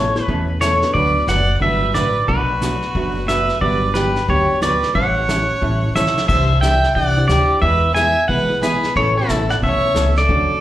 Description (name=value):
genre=country, western swing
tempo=180 BPM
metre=4/4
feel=swing 62% on 8ths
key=unclear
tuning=A4 = 440 Hz
part: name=pedal steel guitar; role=melody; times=0.0-10.6 s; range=A4 to G#5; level=-18 LUFS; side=equal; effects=slapback echo
part: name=archtop guitar, miked and amplified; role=accompaniment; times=0.0-10.5 s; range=B2 to B4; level=-23 LUFS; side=right 2 dB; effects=slapback echo
part: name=upright bass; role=bass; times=0.0-10.6 s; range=F#1 to E2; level=-20 LUFS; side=equal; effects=none
part: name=dark upright piano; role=accompaniment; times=0.1-1.3, 3.6-10.5 s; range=B3 to F#5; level=-29 LUFS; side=left 2 dB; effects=slapback echo
part: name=vintage brush drum kit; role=drums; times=0.2-10.6 s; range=brushed snare drum, crash cymbal, hi-hat, kick drum, snare drum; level=-25 LUFS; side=equal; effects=none
part: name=clear fiddle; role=second line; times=0.6-10.6 s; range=E4 to E5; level=-23 LUFS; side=equal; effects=slapback echo
room=light reverb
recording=live gig heard through the venue's PA, club reverb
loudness=-14 LUFS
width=side -13 dB against mid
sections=0.9-10.6 A section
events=drum fill 6.0-6.3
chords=0.0 Aadd9; 0.9 D6; 2.3 Bm7; 3.6 Gmaj7; 5.0 A7; 6.3 Cadd9; 7.6 E; 9.0 Aadd9